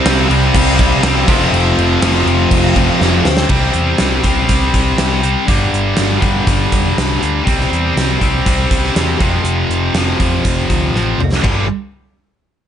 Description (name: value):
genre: hard rock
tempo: 121 BPM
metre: 4/4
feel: straight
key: unclear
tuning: A4 = 440 Hz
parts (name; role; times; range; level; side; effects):
- scooped high-gain guitar; riff; 0.0-11.6 s; F2 to C4; -18 LUFS; right 10 dB; distortion
- sludgy distorted guitar; riff; 0.0-3.3 s; C3 to F4; -19 LUFS; equal; overdrive
- tight distorted guitar; riff; 0.0-11.6 s; F2 to C4; -18 LUFS; left 9 dB; distortion
- overdriven picked electric bass; bass; 0.1-11.7 s; F1 to G2; -18 LUFS; equal; none
- gated 80s drum kit; drums; 0.1-11.6 s; crash cymbal, hi-hat, kick drum, snare drum, splash cymbal, toms; -16 LUFS; equal; none
room: small room ambience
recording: nothing above 10.4 kHz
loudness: -11 LUFS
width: side -9 dB against mid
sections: 0.0-3.5 A section; 3.5-11.4 B section; 11.4-12.7 C section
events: drum fill 3.0-3.5, 10.9-11.4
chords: 0.0 C; 1.3 F; 3.5 C5; 5.5 G5; 7.5 C; 9.2 F5; 11.4 G5